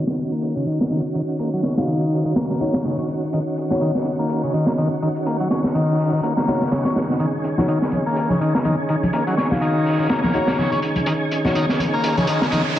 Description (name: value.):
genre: breakbeat, breaks.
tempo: 124 BPM.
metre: 4/4.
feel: swing 57% on 16ths.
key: Eb minor.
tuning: A4 = 440 Hz.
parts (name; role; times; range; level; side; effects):
tonewheel organ; sustained chords; 0.0-12.8 s; Eb3 to Ab4; -24 LUFS; right 1 dB; chorus vibrato, fast rotary speaker.
overdriven combo organ; riff; 0.0-12.8 s; Db3 to Db4; -23 LUFS; left 1 dB; low-pass filter, digital delay.
crunchy breakbeat drum kit; drums; 0.1-12.8 s; hi-hat, snare drum; -24 LUFS; equal; low-pass filter on kick, low-pass filter on hats, low-pass filter on snare, low-pass filter on room.
dark concert grand piano; stabs; 1.8-11.6 s; Eb4 to F5; -27 LUFS; left 2 dB; digital delay.
congas; percussion; 7.6-12.6 s; none; -25 LUFS; equal; none.
riser; sound effects; 11.6-12.8 s; none; -28 LUFS; equal; none.
room: moderate lush hall reverb, RT60 1.9 s.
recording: heavily compressed radio sound, vinyl crackle, low-pass filter.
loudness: -18 LUFS.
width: side -12 dB against mid.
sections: 0.0-12.8 A section.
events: filter sweep on transistor combo organ 0.0-12.8; filter sweep 0.0-12.8; riser 11.6-12.8.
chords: 0.0 Ebm7.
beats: 0.43 0.91 | 1.39 1.88 2.36 2.85 | 3.33 3.81 4.30 4.78 | 5.26 5.75 6.23 6.72 | 7.20 7.68 8.17 8.65 | 9.13 9.62 10.10 10.59 | 11.07 11.55 12.04 12.52.